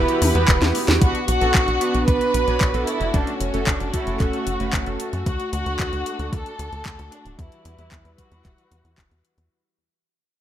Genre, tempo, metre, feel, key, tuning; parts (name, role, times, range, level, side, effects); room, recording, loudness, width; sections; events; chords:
italo disco; 113 BPM; 4/4; straight; B minor; A4 = 441 Hz
dark chamber violin section; melody; 0.0-9.2 s; C#4 to B4; -25 LUFS; right 2 dB; digital delay
dark studio string section; sustained chords; 0.0-9.5 s; E3 to F#5; -29 LUFS; left 2 dB; low-pass filter
chorused polysynth; stabs; 0.0-5.2 s; A3 to C#5; -27 LUFS; right 3 dB
tight sequencer bass; bass; 0.0-9.5 s; D1 to F#2; -25 LUFS; equal
house drum kit; drums; 0.1-9.5 s; handclaps, hi-hat, snare drum, toms; -25 LUFS; left 1 dB; overdrive, small room ambience
electronic kick drum; drums; 0.5-9.1 s; -21 LUFS; equal; small room ambience
light reverb, digital ambience; -18 LUFS; side -11 dB against mid
0.0-1.0 A section; 1.0-9.5 B section
drum fill 0.6-1.0; fade-out 1.0-9.5
0.0 Emadd9; 1.0 Bm; 3.1 F#m; 5.3 D; 7.4 Emadd9